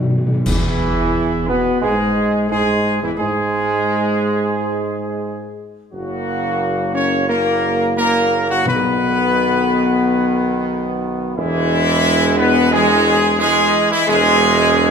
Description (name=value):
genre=classical, ceremonial fanfare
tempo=88 BPM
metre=4/4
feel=straight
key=E lydian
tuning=A4 = 442 Hz
part: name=warm trumpet section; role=melody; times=0.0-14.9 s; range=E4 to C#5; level=-19 LUFS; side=equal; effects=none
part: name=bright trombone section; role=sustained chords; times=0.0-14.9 s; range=C#3 to B3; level=-21 LUFS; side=right 3 dB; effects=none
part: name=mellow French horn section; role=sustained chords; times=0.0-14.9 s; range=E3 to C#4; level=-21 LUFS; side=left 4 dB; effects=none
part: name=warm tuba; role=bass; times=0.0-14.9 s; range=E1 to B2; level=-21 LUFS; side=right 2 dB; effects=none
part: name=timpani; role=percussion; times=0.0-0.4, 8.7-9.6 s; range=B2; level=-21 LUFS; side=left 1 dB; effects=none
part: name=clash cymbals and concert bass drum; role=percussion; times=0.5-1.8 s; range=none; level=-25 LUFS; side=left 1 dB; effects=none
room=wet recital hall reverb, RT60 1.7 s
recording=minimal, uncompressed stereo recording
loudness=-14 LUFS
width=side -6 dB against mid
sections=0.5-14.9 A section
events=timpani fill 0.0-0.5; band accent 0.5-1.1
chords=0.5 E; 5.9 F#; 8.7 B; 11.4 E